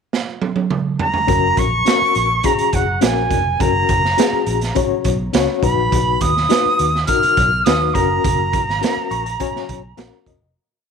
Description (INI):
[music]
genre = uptempo 1960s-style soul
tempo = 104 BPM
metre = 4/4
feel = straight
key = F# major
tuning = A4 = 437 Hz
[part]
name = raw garage drum kit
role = drums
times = 0.1-10.4 s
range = hi-hat, kick drum, snare drum, toms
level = -20 LUFS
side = right 4 dB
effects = none
[part]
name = bright reedy silver concert flute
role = melody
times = 1.0-10.3 s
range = F#5 to E#6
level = -18 LUFS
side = right 2 dB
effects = none
[part]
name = reed electric piano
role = accompaniment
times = 1.3-10.5 s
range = B2 to C#6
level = -21 LUFS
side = left 14 dB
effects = fast tremolo
[part]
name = vintage muted fingered electric bass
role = bass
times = 1.3-10.5 s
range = E1 to D#2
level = -23 LUFS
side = equal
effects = none
[sound]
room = moderate spring reverb, RT60 2.6 s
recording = 1960s-style stereo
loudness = -15 LUFS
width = side -6 dB against mid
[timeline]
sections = 0.0-1.3 pickup bar; 1.3-10.6 A section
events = drum fill 0.1-1.3; fade-out 8.2-10.6; reed electric piano fill 8.8-10.6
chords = 0.0 N.C.; 1.3 F#; 5.6 B; 8.0 F#